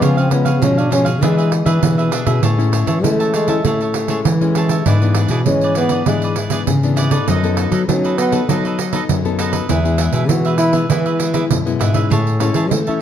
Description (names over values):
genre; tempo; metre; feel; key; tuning
samba and choro; 99 BPM; 4/4; straight; A major; A4 = 440 Hz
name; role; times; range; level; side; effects
warm trombone; melody; 0.0-10.8 s; G#3 to F#4; -19 LUFS; right 1 dB; none
cavaquinho; accompaniment; 0.0-13.0 s; D4 to A5; -24 LUFS; right 3 dB; none
nylon-string guitar; accompaniment; 0.0-13.0 s; G#2 to A4; -20 LUFS; left 7 dB; none
nylon-string guitar; bass; 0.0-13.0 s; E2 to A3; -17 LUFS; left 1 dB; none
pandeiro; percussion; 0.0-13.0 s; none; -21 LUFS; right 8 dB; none
room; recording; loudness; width
moderate large studio reverb, RT60 1.1 s; dark, warm production; -14 LUFS; side -9 dB against mid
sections
0.0-2.4 A section; 2.4-13.0 B section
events
trombone solo 2.4-13.0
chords
0.0 C#; 1.2 E7; 2.4 Amaj7; 4.9 E7/G#; 7.3 B7/F#; 9.7 E; 12.1 Amaj7